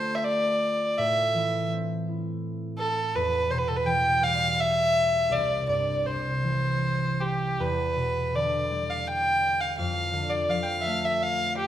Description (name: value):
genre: celtic folk, Celtic slow air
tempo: 83 BPM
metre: 3/4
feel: rubato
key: D dorian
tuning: A4 = 443 Hz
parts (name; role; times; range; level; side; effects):
- dark fiddle; melody; 0.0-11.7 s; G4 to G5; -24 LUFS; equal; none
- concert harp; accompaniment; 0.0-11.7 s; C2 to F4; -30 LUFS; equal; none
room: moderate recital hall reverb, RT60 1.6 s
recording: minimal, uncompressed stereo recording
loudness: -24 LUFS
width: side -11 dB against mid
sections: 0.0-11.7 A section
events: none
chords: 0.0 Dm; 1.0 Am; 3.1 Em; 5.3 C; 7.6 Em7; 9.8 Dm/F